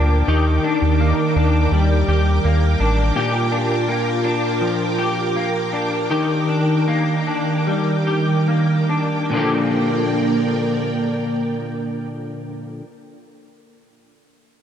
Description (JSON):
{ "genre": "dream pop", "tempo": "70-83 BPM", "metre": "4/4", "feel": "straight", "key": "Bb major", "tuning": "A4 = 440 Hz", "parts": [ { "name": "string machine, violas", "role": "sustained chords", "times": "0.0-12.7 s", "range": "Eb3 to D6", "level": "-21 LUFS", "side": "right 2 dB", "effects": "ensemble chorus" }, { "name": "electric guitar at the edge of break-up", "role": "arpeggios", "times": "0.0-12.9 s", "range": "Bb2 to G4", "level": "-20 LUFS", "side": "left 2 dB", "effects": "ensemble chorus, digital delay" }, { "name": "round analog bass", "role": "bass", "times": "0.0-3.1 s", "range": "A1 to Eb2", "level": "-16 LUFS", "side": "equal", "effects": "none" } ], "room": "moderate huge ambient reverb, RT60 4.2 s", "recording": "dark, warm production", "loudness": "-16 LUFS", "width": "side -9 dB against mid", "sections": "0.0-9.3 A section; 9.3-12.7 B section", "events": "slowing down 3.2-9.3", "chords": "0.3 Ebmaj7; 3.2 Bb6; 6.1 Ebmaj7; 9.3 Bb6" }